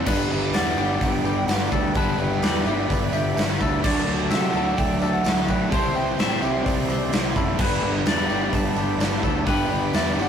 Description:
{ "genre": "rock, shoegaze and dream pop", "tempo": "128 BPM", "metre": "4/4", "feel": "straight", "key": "G major", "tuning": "A4 = 439 Hz", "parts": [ { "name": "soft struck synth lead", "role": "melody", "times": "0.0-10.3 s", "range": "D5 to B5", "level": "-30 LUFS", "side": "right 2 dB", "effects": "chorus, tremolo" }, { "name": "twangy electric guitar", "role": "arpeggios", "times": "0.0-10.3 s", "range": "G4 to E5", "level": "-30 LUFS", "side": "left 5 dB", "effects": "none" }, { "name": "biting overdriven guitar", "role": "riff", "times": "0.0-10.3 s", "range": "G2 to G4", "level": "-31 LUFS", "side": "right 5 dB", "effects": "none" }, { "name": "crunchy overdriven guitar", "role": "riff", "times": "0.0-10.3 s", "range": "G2 to E4", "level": "-29 LUFS", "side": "right 3 dB", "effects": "spring reverb" }, { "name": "overdriven semi-hollow guitar", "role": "riff", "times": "0.0-10.3 s", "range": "G2 to G4", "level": "-28 LUFS", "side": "left 4 dB", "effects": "none" }, { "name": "brassy analog pad", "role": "sustained chords", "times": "0.1-10.3 s", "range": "F#3 to C6", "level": "-33 LUFS", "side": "right 1 dB", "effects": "chorus" }, { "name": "fuzz fingered electric bass", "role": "bass", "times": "0.1-10.3 s", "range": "F#1 to C3", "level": "-28 LUFS", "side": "equal", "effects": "overdrive" }, { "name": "huge arena drum kit", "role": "drums", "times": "0.1-10.1 s", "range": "crash cymbal, hi-hat, kick drum, snare drum", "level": "-25 LUFS", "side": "equal", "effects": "none" }, { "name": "tambourine", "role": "percussion", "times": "0.3-10.3 s", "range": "none", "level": "-44 LUFS", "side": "right 9 dB", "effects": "none" } ], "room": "moderate studio reverb, RT60 0.5 s", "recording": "rough rehearsal-room recording, warm saturation", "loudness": "-20 LUFS", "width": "side -8 dB against mid", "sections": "0.1-10.3 A section", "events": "none", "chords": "0.1 G; 3.8 Dadd9; 5.7 C; 7.6 G", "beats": "| 0.07 0.54 1.01 1.49 | 1.96 2.43 2.90 3.37 | 3.84 4.31 4.78 5.25 | 5.72 6.19 6.66 7.13 | 7.59 8.06 8.53 9.00 | 9.47 9.94" }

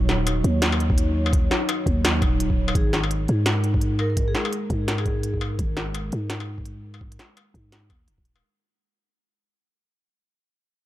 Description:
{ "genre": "half-time drum and bass", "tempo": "169 BPM", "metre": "4/4", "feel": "swing 58% on 16ths, half-time", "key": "unclear", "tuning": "A4 = 439 Hz", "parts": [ { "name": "dark analog pad", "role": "sustained chords", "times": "0.0-8.4 s", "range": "Gb3 to Db5", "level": "-30 LUFS", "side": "right 1 dB", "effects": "chorus, sidechain pumping" }, { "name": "growling 808-style bass", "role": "bass", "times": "0.0-8.4 s", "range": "Eb1 to Ab2", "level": "-24 LUFS", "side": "equal", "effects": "tube saturation" }, { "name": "industrial drum kit", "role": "drums", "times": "0.1-8.4 s", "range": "hi-hat, snare drum, struck metal", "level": "-26 LUFS", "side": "left 1 dB", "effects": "none" }, { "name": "electronic kick drum", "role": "drums", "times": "0.9-8.2 s", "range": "none", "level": "-24 LUFS", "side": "equal", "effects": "none" }, { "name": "vibraphone with medium hard mallets", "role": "melody", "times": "2.8-5.3 s", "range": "Ab4 to Bb4", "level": "-34 LUFS", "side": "equal", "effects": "vintage 12-bit sampler grit, tape echo" } ], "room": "little or no reverb", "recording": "dark, warm production", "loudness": "-20 LUFS", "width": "side -14 dB against mid", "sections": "0.0-8.4 A section", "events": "drop 0.0-8.4; fade-out 2.8-8.4", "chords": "0.0 Ebm7; 2.8 Absus2", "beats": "0.27 0.62 0.98 | 1.33 1.69 2.04 2.40 | 2.75 3.11 3.46 3.82 | 4.17 4.53 4.88 5.24 | 5.59 5.95 6.30 6.66 | 7.01 7.37 7.72 8.08" }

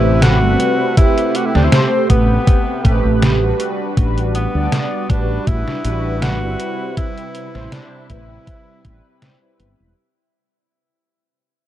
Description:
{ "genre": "vaporwave", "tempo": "80 BPM", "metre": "4/4", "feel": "swing 54% on 16ths", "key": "unclear", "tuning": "A4 = 440 Hz", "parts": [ { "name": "clear tenor saxophone", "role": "melody", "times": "0.0-9.2 s", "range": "B3 to F#4", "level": "-23 LUFS", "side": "equal", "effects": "tape echo" }, { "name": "mellow synth brass", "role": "accompaniment", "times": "0.0-9.9 s", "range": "C3 to D5", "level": "-20 LUFS", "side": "right 1 dB", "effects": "lush chorus" }, { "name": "muted studio string section", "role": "sustained chords", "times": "0.0-9.9 s", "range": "C3 to E4", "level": "-30 LUFS", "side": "right 1 dB", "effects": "none" }, { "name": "mellow fretless electric bass", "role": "bass", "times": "0.0-9.9 s", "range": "E1 to D2", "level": "-17 LUFS", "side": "equal", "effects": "analog chorus" }, { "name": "detuned 8-bit digital drum machine", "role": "drums", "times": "0.2-9.8 s", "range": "hi-hat, snare drum", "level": "-18 LUFS", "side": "equal", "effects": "none" }, { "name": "electronic kick drum", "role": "drums", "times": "1.0-9.0 s", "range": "none", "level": "-15 LUFS", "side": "equal", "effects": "none" } ], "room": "digital ambience", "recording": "dark, warm production, cassette tape", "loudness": "-14 LUFS", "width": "side -12 dB against mid", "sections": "0.0-10.0 A section", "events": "fade-out 2.0-10.0", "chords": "0.0 Am9; 3.6 Gmaj7/A; 6.6 Cmaj7/A", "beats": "0.22 | 0.97 1.72 2.47 3.22 | 3.97 4.72 5.47 6.22 | 6.97 7.72 8.47 9.22" }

